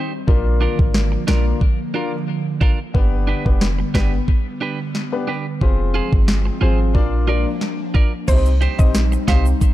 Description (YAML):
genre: dancehall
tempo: 90 BPM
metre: 4/4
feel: straight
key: C minor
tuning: A4 = 443 Hz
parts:
  - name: airy breathy pad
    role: sustained chords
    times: 0.0-9.7 s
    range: D3 to Eb4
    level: -27 LUFS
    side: right 1 dB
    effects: chorus, sidechain pumping
  - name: clean electric guitar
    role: arpeggios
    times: 0.0-9.5 s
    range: D4 to D5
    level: -28 LUFS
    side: right 6 dB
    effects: ping-pong delay
  - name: warm grand piano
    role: accompaniment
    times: 0.3-9.5 s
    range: Bb3 to D5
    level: -26 LUFS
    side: left 5 dB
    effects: none
  - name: clean 808-style bass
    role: bass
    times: 0.3-9.5 s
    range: F1 to C2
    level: -18 LUFS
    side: equal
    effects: none
  - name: afro-pop drum kit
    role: drums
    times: 0.3-9.7 s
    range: crash cymbal, hi-hat, kick drum, rim click, snare drum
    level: -17 LUFS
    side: equal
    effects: none
  - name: mallet-like synth pluck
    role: melody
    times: 8.3-9.4 s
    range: C5 to F5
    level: -26 LUFS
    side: right 2 dB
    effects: chorus, ping-pong delay
  - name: egg shaker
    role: percussion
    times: 8.3-9.7 s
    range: none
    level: -39 LUFS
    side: right 11 dB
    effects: none
room: digital ambience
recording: dark, warm production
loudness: -16 LUFS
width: side -14 dB against mid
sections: 0.0-8.3 A section; 8.3-9.7 B section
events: none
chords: 0.3 Bb; 2.9 G; 5.6 Fm; 6.9 Bb; 8.3 Cm